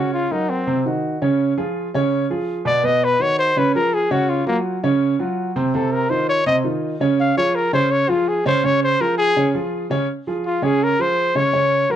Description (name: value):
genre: jazz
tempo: 166 BPM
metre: 4/4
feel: straight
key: unclear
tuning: A4 = 440 Hz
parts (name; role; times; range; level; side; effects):
- mellow trumpet; melody; 0.0-12.0 s; Bb3 to F5; -18 LUFS; left 2 dB; plate reverb
- warm upright piano; accompaniment; 0.0-12.0 s; Cb3 to Db5; -20 LUFS; right 2 dB; none
room: moderate studio ambience, RT60 0.5 s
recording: dark, warm production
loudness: -17 LUFS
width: side -10 dB against mid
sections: 0.0-10.1 A section; 10.1-12.0 B section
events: trumpet solo 0.0-10.1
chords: 0.0 Ebm13/Db; 0.7 Cdim; 1.4 Db; 2.8 Badd9; 3.6 Db; 4.3 Gb5; 5.7 F5; 7.2 Dbmaj7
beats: 0.31 0.67 1.03 | 1.39 1.76 2.12 2.48 | 2.84 3.20 3.56 3.93 | 4.29 4.65 5.01 5.38 | 5.74 6.10 6.46 6.82 | 7.18 7.55 7.91 8.27 | 8.63 9.00 9.36 9.72 | 10.08 10.45 10.81 11.17 | 11.53 11.90